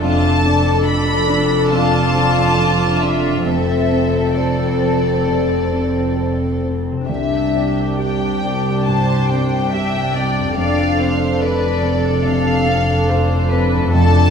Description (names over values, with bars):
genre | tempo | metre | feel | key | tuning
cinematic, emotional film score for orchestra | 64-72 BPM | 4/4 | rubato | unclear | A4 = 439 Hz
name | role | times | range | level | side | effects
dark studio violin section | melody | 0.0-14.3 s | D5 to B5 | -22 LUFS | left 3 dB | none
warm studio violin section | second line | 0.0-14.3 s | F4 to E5 | -22 LUFS | left 4 dB | none
warm baby grand piano | accompaniment | 0.0-14.3 s | C2 to A4 | -21 LUFS | left 1 dB | none
warm studio viola section | accompaniment | 0.0-14.3 s | C4 to A4 | -22 LUFS | right 3 dB | none
concert harp | arpeggios | 0.0-14.3 s | F2 to E5 | -25 LUFS | left 4 dB | none
warm studio cello section | bass | 0.0-14.3 s | C2 to F2 | -22 LUFS | right 1 dB | none
warm studio double bass section | bass | 0.0-14.3 s | F1 to C2 | -22 LUFS | right 2 dB | none
room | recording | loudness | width
wet recital hall reverb, RT60 1.3 s | minimal, uncompressed stereo recording | -14 LUFS | side -6 dB against mid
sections
0.0-14.3 A section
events
none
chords
0.0 Dmadd9/F; 3.5 F6; 7.1 Cadd9; 10.6 F6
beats
| 0.04 0.87 1.72 2.58 | 3.46 4.36 5.26 6.16 | 7.09 7.97 8.85 9.72 | 10.56 11.41 12.25 13.09 | 13.92